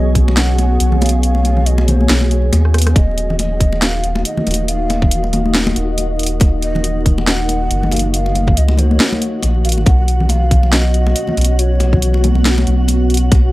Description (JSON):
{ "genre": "deep dubstep", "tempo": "139 BPM", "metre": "4/4", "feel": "swing 57% on 16ths, half-time", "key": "Eb minor", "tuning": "A4 = 440 Hz", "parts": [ { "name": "breathy mellow ney", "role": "melody", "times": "0.0-12.5 s", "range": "B4 to F#5", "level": "-24 LUFS", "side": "equal", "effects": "dub echo" }, { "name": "deep dark ambient pad", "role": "sustained chords", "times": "0.0-13.5 s", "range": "B3 to Eb5", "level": "-22 LUFS", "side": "equal", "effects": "chorus, built-in reverb" }, { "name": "soft dub sub bass", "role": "bass", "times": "0.0-13.5 s", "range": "Eb1 to D#2", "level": "-14 LUFS", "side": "equal", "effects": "tube saturation" }, { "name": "flickering grainy texture", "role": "texture", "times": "0.0-13.5 s", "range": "Gb4 to Ab4", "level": "-27 LUFS", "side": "equal", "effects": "built-in reverb" }, { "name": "electronic kick drum", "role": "drums", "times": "0.2, 3.0-13.4 s", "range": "none", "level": "-12 LUFS", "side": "equal", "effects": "none" }, { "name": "garage drum kit", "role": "drums", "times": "0.2-13.4 s", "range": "hi-hat, rim click, snare drum", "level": "-18 LUFS", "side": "equal", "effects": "none" }, { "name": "congas", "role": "percussion", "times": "0.2-13.4 s", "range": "none", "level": "-22 LUFS", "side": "left 2 dB", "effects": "none" } ], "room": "little or no reverb", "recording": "dry, gritty hardware recording, vinyl crackle", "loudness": "-12 LUFS", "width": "side -18 dB against mid", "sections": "0.0-13.5 A section", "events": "kick drops out 1.2-3.0; drum fill 2.6-3.0", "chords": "0.0 Badd9; 3.0 Ebmadd9; 9.9 Badd9" }